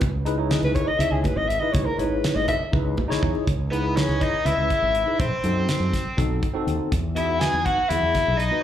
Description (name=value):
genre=electric jazz fusion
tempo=244 BPM (eighths)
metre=7/8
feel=straight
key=C# minor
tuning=A4 = 439 Hz
part: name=fretless electric bass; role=bass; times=0.0-8.6 s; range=G#1 to F#2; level=-26 LUFS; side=equal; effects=none
part: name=damped 70s drum kit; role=drums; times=0.0-8.5 s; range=hi-hat, kick drum, snare drum, toms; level=-26 LUFS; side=equal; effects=none
part: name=congas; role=percussion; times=0.0-3.5 s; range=none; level=-34 LUFS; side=right 2 dB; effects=slapback echo
part: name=tine electric piano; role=accompaniment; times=0.3-8.6 s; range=B3 to C#5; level=-27 LUFS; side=left 1 dB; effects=medium stereo tremolo, wide subtle chorus, slapback echo
part: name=mellow soprano saxophone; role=melody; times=0.6-8.6 s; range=G#4 to G#5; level=-24 LUFS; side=left 2 dB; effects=slapback echo
part: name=overdriven electric guitar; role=second line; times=3.7-8.6 s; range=B3 to G#4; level=-28 LUFS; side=equal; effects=spring reverb, slapback echo
room=light reverb, small room ambience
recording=live gig heard through the venue's PA, club reverb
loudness=-20 LUFS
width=side -10 dB against mid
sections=0.0-3.5 A section; 3.5-8.6 B section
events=soprano saxophone solo 0.0-3.5; drum fill 2.7-3.5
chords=0.0 C#m7; 5.2 B7b9; 6.9 Emaj9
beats=| 0.02 0.27 0.51 0.76 1.00 1.25 1.50 | 1.74 1.99 2.24 2.48 2.73 2.98 3.22 | 3.47 3.71 3.96 4.21 4.45 4.70 4.95 | 5.19 5.44 5.69 5.93 6.18 6.42 6.67 | 6.92 7.17 7.41 7.66 7.90 8.15 8.40